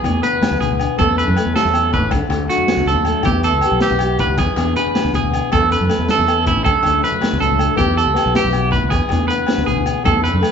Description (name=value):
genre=highlife guitar band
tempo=106 BPM (dotted quarters)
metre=12/8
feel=straight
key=unclear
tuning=A4 = 437 Hz
part: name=fingerpicked old ladder-braced acoustic guitar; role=accompaniment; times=0.0-10.5 s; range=A2 to A4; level=-21 LUFS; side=left 5 dB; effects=none
part: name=electric guitar at the edge of break-up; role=arpeggios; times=0.0-10.5 s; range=E4 to B4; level=-18 LUFS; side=right 4 dB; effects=none
part: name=fingered electric bass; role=bass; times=0.0-10.4 s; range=A1 to F#2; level=-20 LUFS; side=equal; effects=none
part: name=agogo bells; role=percussion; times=0.0-10.5 s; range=none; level=-28 LUFS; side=left 6 dB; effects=none
part: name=congas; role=percussion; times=0.0-10.4 s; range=none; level=-26 LUFS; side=left 1 dB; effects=none
part: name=crunchy breakbeat drum kit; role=drums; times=0.1-10.5 s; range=hi-hat, kick drum, snare drum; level=-23 LUFS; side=equal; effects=none
room=wet stone room reverb, RT60 1.0 s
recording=band playing live in one room, nothing above 7.7 kHz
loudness=-14 LUFS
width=side -7 dB against mid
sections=0.0-10.5 A section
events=none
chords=0.0 E7; 1.0 A/E; 2.1 D; 3.3 Em; 4.4 E7; 5.5 A/E; 6.7 D; 7.8 Em; 8.9 E7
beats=0.41 0.98 1.55 | 2.12 2.68 3.25 3.82 | 4.39 4.95 5.52 6.09 | 6.65 7.22 7.79 8.36 | 8.92 9.49 10.05